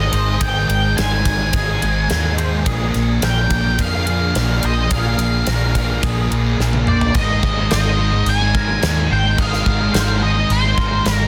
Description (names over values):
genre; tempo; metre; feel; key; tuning
rock, shoegaze and dream pop; 107 BPM; 4/4; straight; Ab lydian; A4 = 439 Hz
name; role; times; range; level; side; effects
octave-fuzz lead guitar; melody; 0.0-11.3 s; C5 to Ab5; -24 LUFS; equal; distortion, slapback echo
ethereal airy pad; sustained chords; 0.1-7.1 s; Ab3 to D5; -37 LUFS; equal; none
twangy electric guitar; arpeggios; 0.0-11.3 s; Ab4 to Eb5; -32 LUFS; equal; ensemble chorus, slapback echo
raw garage guitar; riff; 0.0-11.3 s; Ab2 to Ab4; -28 LUFS; equal; overdrive, reverse reverb
thick fuzz guitar; riff; 0.0-11.3 s; Ab2 to Bb3; -25 LUFS; equal; distortion, lush chorus
vintage muted fingered electric bass; bass; 0.0-11.3 s; Ab1 to F2; -22 LUFS; equal; none
gated 80s drum kit; drums; 0.1-11.2 s; crash cymbal, kick drum, ride cymbal, snare drum, toms; -24 LUFS; equal; none
room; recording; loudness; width
small room ambience; dense, heavily limited modern master; -17 LUFS; mono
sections
0.0-7.2 A section; 7.2-11.3 B section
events
drum fill 6.6-7.2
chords
0.0 Ab; 2.7 Bb7; 7.2 Ab